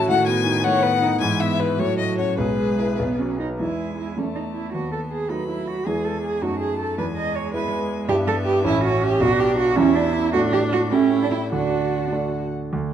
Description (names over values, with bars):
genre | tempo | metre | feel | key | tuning
quick classical-period movement for piano quartet | 97-110 BPM (dotted quarters) | 6/8 | rubato | E major, D major from 8.1 s | A4 = 440 Hz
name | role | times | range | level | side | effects
rich violin | melody | 0.0-12.5 s | B4 to B5 | -27 LUFS | left 8 dB | none
warm cello | second line | 0.0-12.1 s | D#3 to D#5 | -23 LUFS | right 4 dB | none
clear viola | accompaniment | 0.0-12.4 s | F#3 to C#5 | -29 LUFS | right 2 dB | none
warm grand piano | accompaniment | 0.0-12.9 s | A1 to B4 | -24 LUFS | equal | none
room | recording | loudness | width
moderate recital hall reverb, RT60 1.4 s | dark, warm production | -19 LUFS | side -9 dB against mid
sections
0.0-3.6 A section; 3.6-12.7 B section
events
none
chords
0.1 B7/A; 1.2 E/G#; 1.8 F#m/A; 2.4 E/B; 3.0 B; 3.6 E; 4.2 A5/E; 4.7 B7/D#; 5.9 E; 6.4 D#dim/F#; 7.0 E; 8.1 Em7/G; 8.6 A; 9.2 Bm; 9.8 Em; 10.3 D/A; 10.9 A7; 11.5 D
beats
| 0.09 0.65 | 1.20 1.78 | 2.38 2.99 | 3.60 4.17 | 4.74 5.30 | 5.86 6.42 | 6.98 7.53 | 8.09 8.64 | 9.21 9.77 | 10.34 10.93 | 11.52 12.12 | 12.72